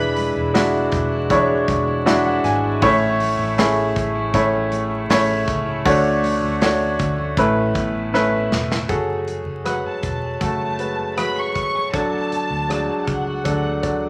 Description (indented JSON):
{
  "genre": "pop ballad",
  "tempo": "79 BPM",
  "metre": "4/4",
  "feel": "straight",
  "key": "A major",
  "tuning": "A4 = 440 Hz",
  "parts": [
    { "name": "dark studio violin section", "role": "melody", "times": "0.0-0.6, 9.7-14.1 s", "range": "F#5 to C#6", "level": "-28 LUFS", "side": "equal", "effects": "none" },
    { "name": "clear grand piano", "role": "accompaniment", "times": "0.0-14.1 s", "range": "A2 to G#5", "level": "-21 LUFS", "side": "equal", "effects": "none" },
    { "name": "fingerpicked steel-string acoustic guitar", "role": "arpeggios", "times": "0.0-14.1 s", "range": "E2 to G#4", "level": "-33 LUFS", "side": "equal", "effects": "none" },
    { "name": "vintage muted fingered electric bass", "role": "bass", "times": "0.0-14.1 s", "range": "E1 to D2", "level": "-30 LUFS", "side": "equal", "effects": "none" },
    { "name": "modern studio drum kit", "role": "drums", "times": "0.2-14.0 s", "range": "hi-hat, kick drum, rim click, snare drum", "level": "-27 LUFS", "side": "equal", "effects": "none" }
  ],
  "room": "moderate large studio reverb, RT60 1.3 s",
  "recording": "vinyl crackle",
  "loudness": "-20 LUFS",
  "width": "mono",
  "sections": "0.0-8.9 A section; 8.9-14.1 B section",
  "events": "grand piano fill 1.7-2.8, 13.8; drum fill 8.1-8.9",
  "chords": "0.0 E7; 2.8 A; 5.9 Dmaj7; 7.4 Aadd9; 8.9 F#madd9; 11.9 D"
}